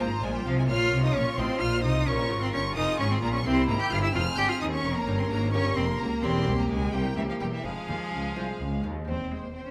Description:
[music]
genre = classical, baroque-style concerto movement with solo episodes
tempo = 86 BPM (dotted quarters)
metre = 6/8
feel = straight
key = F minor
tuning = A4 = 440 Hz
[part]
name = rich cello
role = melody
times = 0.0-9.7 s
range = E3 to G4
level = -33 LUFS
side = equal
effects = none
[part]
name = rich chamber violin section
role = melody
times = 0.0-9.7 s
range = E5 to G6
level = -36 LUFS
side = equal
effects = none
[part]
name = rich chamber violin section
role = second line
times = 0.0-9.7 s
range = G4 to Db5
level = -38 LUFS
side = equal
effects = none
[part]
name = lute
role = accompaniment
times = 0.0-9.7 s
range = Eb2 to F5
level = -39 LUFS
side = equal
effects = none
[part]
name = rich chamber viola section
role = accompaniment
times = 0.0-9.7 s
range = Ab3 to C5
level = -38 LUFS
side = equal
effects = none
[part]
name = clear chamber double bass section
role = bass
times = 0.0-9.7 s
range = E1 to Eb2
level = -34 LUFS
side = equal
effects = none
[part]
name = rich chamber cello section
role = bass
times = 0.0-9.7 s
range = C2 to C3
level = -34 LUFS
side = equal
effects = none
[sound]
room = light reverb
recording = close, detailed microphones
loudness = -27 LUFS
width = mono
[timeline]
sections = 0.0-9.1 A section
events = none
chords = 0.0 Fm; 0.7 Bbm; 1.4 F7/A; 2.1 Bb5; 3.5 C7; 4.1 Fm; 4.8 Gm7b5/F; 6.2 Edim7; 7.6 Fm; 9.1 C/E

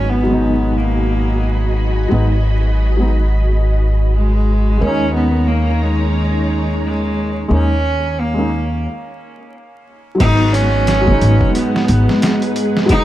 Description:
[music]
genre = trip hop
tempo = 89 BPM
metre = 4/4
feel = swing 59% on 16ths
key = G# minor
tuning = A4 = 443 Hz
[part]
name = rich cello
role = melody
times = 0.0-13.0 s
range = G#3 to D#4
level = -19 LUFS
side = right 1 dB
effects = dub echo
[part]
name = felt-muted upright piano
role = accompaniment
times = 0.0-13.0 s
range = B2 to A#4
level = -20 LUFS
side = left 1 dB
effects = harmonic tremolo, tape echo
[part]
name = string machine, cellos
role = sustained chords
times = 0.0-13.0 s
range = G#3 to B5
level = -23 LUFS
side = equal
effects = ensemble chorus
[part]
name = upright bass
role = bass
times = 0.0-12.1 s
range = G#1 to D#2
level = -16 LUFS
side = equal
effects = tube saturation
[part]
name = boom bap sampler-style drum kit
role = drums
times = 10.2-13.0 s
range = crash cymbal, hi-hat, kick drum, snare drum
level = -18 LUFS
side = equal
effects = overdrive
[sound]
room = studio ambience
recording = dark, warm production, vinyl crackle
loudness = -13 LUFS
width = side -14 dB against mid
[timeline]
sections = 0.0-10.2 A section; 10.2-13.0 B section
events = break 8.9-10.2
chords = 0.0 G#m7; 4.8 D#7sus4; 10.2 G#m7

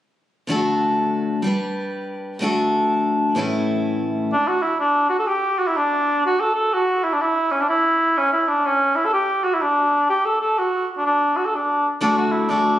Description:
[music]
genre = celtic folk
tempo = 125 BPM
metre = 2/4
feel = swing 62% on 8ths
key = D major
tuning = A4 = 436 Hz
[part]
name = picked steel-string acoustic guitar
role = accompaniment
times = 0.5-4.3, 12.0-12.8 s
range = A2 to B4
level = -19 LUFS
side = left 1 dB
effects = none
[part]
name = dark cor anglais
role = melody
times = 4.3-12.8 s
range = C#4 to A4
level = -17 LUFS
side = right 1 dB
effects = plate reverb, tape echo
[sound]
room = moderate studio ambience, RT60 0.5 s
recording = recorded on a phone in the room, club reverb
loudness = -18 LUFS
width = side -13 dB against mid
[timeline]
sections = 0.5-4.3 A section; 4.3-12.0 B section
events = none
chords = 0.5 D; 1.4 G; 2.4 D; 3.4 A; 4.3 N.C.; 12.0 D

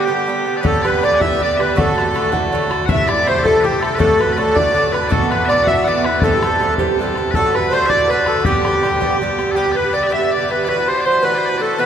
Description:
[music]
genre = celtic folk, Celtic jig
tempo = 108 BPM (dotted quarters)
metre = 6/8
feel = straight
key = G major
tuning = A4 = 440 Hz
[part]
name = accordion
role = melody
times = 0.0-11.9 s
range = G4 to E5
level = -17 LUFS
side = equal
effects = none
[part]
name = loud bright bagpipes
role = second line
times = 0.0-11.9 s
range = G4 to Ab5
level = -22 LUFS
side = left 2 dB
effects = none
[part]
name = Irish bouzouki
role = accompaniment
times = 0.0-11.9 s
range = G2 to G4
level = -20 LUFS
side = right 4 dB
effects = none
[part]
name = bodhran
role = percussion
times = 0.6-9.5 s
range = none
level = -22 LUFS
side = left 2 dB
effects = none
[sound]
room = wet cathedral reverb, RT60 5.2 s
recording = recorded in a church or concert hall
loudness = -14 LUFS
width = side -8 dB against mid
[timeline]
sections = 0.7-9.6 A section; 9.6-11.9 B section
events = none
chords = 0.0 G; 0.7 Gadd9; 1.8 D; 2.9 Am/C; 4.0 D; 5.1 Esus2; 6.2 C; 7.3 D; 8.5 G; 10.7 Dadd9

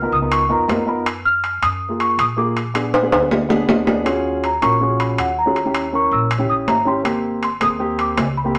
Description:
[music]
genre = Afro-Cuban jazz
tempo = 160 BPM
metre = 4/4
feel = straight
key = Eb minor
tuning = A4 = 439 Hz
[part]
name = small celesta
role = melody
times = 0.0-8.6 s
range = Gb5 to F6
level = -22 LUFS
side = equal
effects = none
[part]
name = dark baby grand piano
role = accompaniment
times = 0.0-8.6 s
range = Bb3 to Bb4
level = -23 LUFS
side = equal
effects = none
[part]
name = upright bass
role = bass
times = 0.0-8.6 s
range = Ab1 to Gb2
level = -29 LUFS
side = equal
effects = none
[part]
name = timbales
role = percussion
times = 0.3-8.6 s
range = none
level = -23 LUFS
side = equal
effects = none
[sound]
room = wet studio reverb, RT60 0.6 s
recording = none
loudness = -18 LUFS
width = mono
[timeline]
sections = 0.0-4.1 A section; 4.1-8.6 B section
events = drum fill 2.9-4.1; celesta solo 4.1-8.6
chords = 0.0 Db13; 1.1 Gbmaj9; 2.6 Bb7b9; 4.1 Ebm11; 5.6 Eb7b9; 7.1 Abmaj7

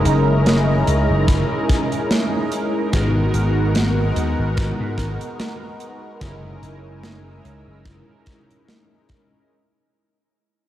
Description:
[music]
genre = vaporwave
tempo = 73 BPM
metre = 4/4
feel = swing 55% on 16ths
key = unclear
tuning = A4 = 441 Hz
[part]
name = mellow synth brass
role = accompaniment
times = 0.0-9.5 s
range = G#3 to A#4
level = -22 LUFS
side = equal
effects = phaser, wide subtle chorus, cassette tape, tape echo
[part]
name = soft string machine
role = sustained chords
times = 0.0-9.5 s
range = G#4 to E6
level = -30 LUFS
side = left 1 dB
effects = phaser, ensemble chorus
[part]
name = vintage slap bass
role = bass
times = 0.1-8.0 s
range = F#1 to G#2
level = -20 LUFS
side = equal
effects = none
[part]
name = tight metal drum kit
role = drums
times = 0.1-9.3 s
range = hi-hat, snare drum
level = -24 LUFS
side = right 1 dB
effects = gated reverb
[part]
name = kick drum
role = drums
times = 1.3-9.3 s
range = none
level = -23 LUFS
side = equal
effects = gated reverb
[sound]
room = light reverb, small room ambience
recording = cassette tape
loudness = -17 LUFS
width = side -12 dB against mid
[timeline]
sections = 0.0-9.5 A section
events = fade-out 0.0-9.5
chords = 0.0 F#13; 2.9 G#m9; 6.2 F#13

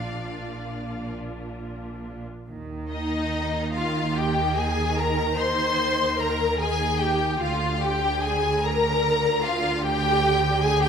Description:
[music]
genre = classical, slow romantic movement for string orchestra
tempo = 43-51 BPM (dotted quarters)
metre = 12/8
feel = rubato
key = Eb major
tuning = A4 = 441 Hz
[part]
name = rich studio violin section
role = melody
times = 0.0-10.9 s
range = Eb5 to C6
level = -27 LUFS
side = left 3 dB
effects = none
[part]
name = rich studio violin section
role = second line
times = 0.0-10.9 s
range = Eb4 to D5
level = -28 LUFS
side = left 3 dB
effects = none
[part]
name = rich studio viola section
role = accompaniment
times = 0.0-10.9 s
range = D4 to C5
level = -29 LUFS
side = right 2 dB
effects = none
[part]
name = rich studio cello section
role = bass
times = 0.0-10.9 s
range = Bb2 to Eb3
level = -31 LUFS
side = right 2 dB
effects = none
[part]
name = rich studio double bass section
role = bass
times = 0.0-10.9 s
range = Bb1 to Eb2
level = -30 LUFS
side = right 3 dB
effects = none
[sound]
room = wet scoring stage reverb, RT60 1.8 s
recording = none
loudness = -22 LUFS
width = side -7 dB against mid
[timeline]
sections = 0.0-2.5 A section; 2.5-10.9 B section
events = none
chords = 0.0 Bb; 2.5 Eb6; 7.4 Bb/D

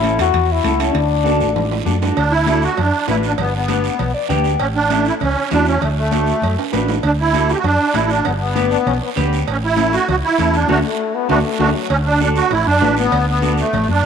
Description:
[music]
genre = latin, cumbia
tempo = 197 BPM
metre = 4/4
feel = straight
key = D major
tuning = A4 = 440 Hz
[part]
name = breathy trombone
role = second line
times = 0.0-1.8, 8.7-11.9 s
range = F#3 to F#4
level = -21 LUFS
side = left 8 dB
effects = none
[part]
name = mellow electric guitar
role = accompaniment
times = 0.0-14.1 s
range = C#4 to G5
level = -23 LUFS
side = right 1 dB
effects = phaser
[part]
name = hollow-body short-scale fingered electric bass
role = bass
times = 0.0-14.1 s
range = G1 to F#2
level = -19 LUFS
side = equal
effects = none
[part]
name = congas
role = percussion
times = 0.0-14.0 s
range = none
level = -27 LUFS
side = left 12 dB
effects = none
[part]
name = guiro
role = percussion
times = 0.0-14.1 s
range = none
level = -31 LUFS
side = right 14 dB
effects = none
[part]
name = timbales and cowbell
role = percussion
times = 0.0-13.9 s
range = none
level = -28 LUFS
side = right 14 dB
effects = none
[part]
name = musette accordion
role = melody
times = 2.2-14.1 s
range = A3 to G4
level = -18 LUFS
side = right 2 dB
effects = none
[sound]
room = moderate plate reverb, RT60 3.3 s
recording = 1960s-style stereo with parts hard left and right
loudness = -14 LUFS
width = side -7 dB against mid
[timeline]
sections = 0.0-2.2 A section; 2.2-11.9 B section; 11.9-14.1 C section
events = trombone solo 0.0-2.2; drum fill 1.3-2.2, 6.6-7.0, 11.0-11.9; clean electric guitar fill 4.0-4.6; band accent 10.7-11.9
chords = 0.0 A; 1.0 D; 3.4 G; 4.6 A; 5.8 D; 8.3 G; 9.5 A; 10.7 D

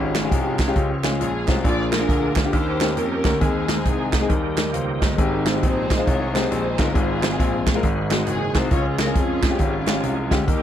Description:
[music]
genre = uptempo gospel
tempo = 136 BPM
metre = 4/4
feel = swing 63% on 8ths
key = Ab major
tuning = A4 = 439 Hz
[part]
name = warm studio string section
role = melody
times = 0.0-10.6 s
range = Ab3 to D5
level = -27 LUFS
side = right 1 dB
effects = tape echo
[part]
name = clear grand piano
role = accompaniment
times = 0.0-10.6 s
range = Ab2 to F5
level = -25 LUFS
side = left 4 dB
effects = none
[part]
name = bright tonewheel organ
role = sustained chords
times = 0.0-10.6 s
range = Eb3 to Ab4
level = -30 LUFS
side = right 6 dB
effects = slow rotary speaker, overdrive, chorus vibrato
[part]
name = clear grand piano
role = bass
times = 0.0-10.6 s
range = Gb1 to F2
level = -26 LUFS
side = left 1 dB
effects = none
[part]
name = swinging big-band drum kit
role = drums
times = 0.1-10.6 s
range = hi-hat, kick drum, snare drum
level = -22 LUFS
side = equal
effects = none
[part]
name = group handclap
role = percussion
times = 0.2-10.4 s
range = none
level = -32 LUFS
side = right 11 dB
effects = none
[sound]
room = little or no reverb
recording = dry, close 1970s-style studio recording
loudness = -18 LUFS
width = side -10 dB against mid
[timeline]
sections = 0.0-10.6 A section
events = none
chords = 0.0 Db/Ab; 1.6 Bb7; 2.5 Eb7; 3.4 Ab/Eb; 4.3 Eb; 5.2 Ab; 7.0 Fm/Ab; 7.8 Ab7; 8.7 Db

